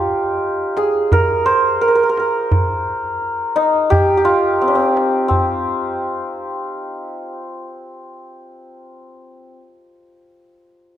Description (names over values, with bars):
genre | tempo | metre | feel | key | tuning
Persian modal ensemble | 86 BPM | 4/4 | straight | C dastgah shur | A4 = 440 Hz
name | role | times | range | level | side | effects
santur | melody | 0.0-9.5 s | C4 to C5 | -16 LUFS | equal | none
tombak | percussion | 0.8-5.6 s | none | -19 LUFS | right 1 dB | none
room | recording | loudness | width
moderate recital hall reverb, RT60 1.6 s | dark, warm production | -15 LUFS | side -11 dB against mid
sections
0.0-5.3 A section; 5.3-8.1 B section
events
none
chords
none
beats
0.42 1.11 1.81 | 2.50 3.20 3.90 4.59 | 5.29 5.99 6.68 7.38